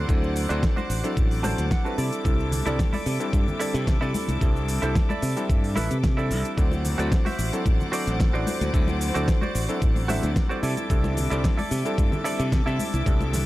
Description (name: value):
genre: nu-disco, nu disco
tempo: 111 BPM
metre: 4/4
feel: straight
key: unclear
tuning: A4 = 441 Hz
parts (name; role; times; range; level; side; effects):
- warm electric grand piano; accompaniment; 0.0-13.4 s; F#3 to A4; -30 LUFS; left 1 dB; low-pass filter, analog delay
- clear chamber string section; sustained chords; 0.0-13.5 s; A4 to D6; -34 LUFS; left 1 dB; sidechain pumping
- direct-recorded clean electric guitar; riff; 0.0-13.1 s; D4 to A5; -32 LUFS; right 4 dB; lush chorus, low-pass filter, analog delay
- modern bright fingered electric bass; bass; 0.0-13.4 s; A1 to C3; -26 LUFS; equal; none
- electronic kick drum; drums; 0.1-13.2 s; none; -22 LUFS; equal; small room ambience
- pop drum kit; drums; 0.1-13.4 s; cabasa, hi-hat, snare drum; -33 LUFS; equal; small room ambience
- congas; percussion; 0.8-13.4 s; none; -34 LUFS; left 2 dB; none
room: digital ambience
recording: dry, gritty hardware recording, transformer saturation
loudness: -21 LUFS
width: side -16 dB against mid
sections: 0.0-13.5 A section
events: clean electric guitar fill 1.2-2.3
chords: 0.0 D7; 2.0 C69; 6.6 D7; 10.6 C69